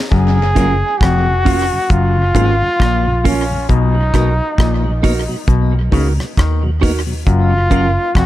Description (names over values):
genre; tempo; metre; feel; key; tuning
roots reggae; 67 BPM; 4/4; swing 59% on 16ths; F# major; A4 = 440 Hz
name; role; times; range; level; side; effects
brilliant trombone; melody; 0.1-8.3 s; C#4 to G#4; -18 LUFS; equal; dub echo
overdriven clav; riff; 0.1-8.3 s; E#2 to D#3; -20 LUFS; left 5 dB; none
vintage muted fingered electric bass; bass; 0.1-8.3 s; E#1 to D#2; -16 LUFS; equal; none
deep reggae drum kit; drums; 0.1-8.3 s; hi-hat, kick drum, rim click; -17 LUFS; equal; tape echo
mellow tonewheel organ; accompaniment; 0.4-7.8 s; F#2 to E#4; -26 LUFS; left 1 dB; overdrive, slow rotary speaker, tape echo
clean electric guitar; accompaniment; 0.6-7.9 s; C#4 to A#4; -24 LUFS; right 8 dB; dub echo
room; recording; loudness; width
little or no reverb; none; -12 LUFS; side -14 dB against mid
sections
0.1-8.3 A section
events
none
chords
0.1 F#maj7; 3.7 Bmaj7; 7.3 F#maj7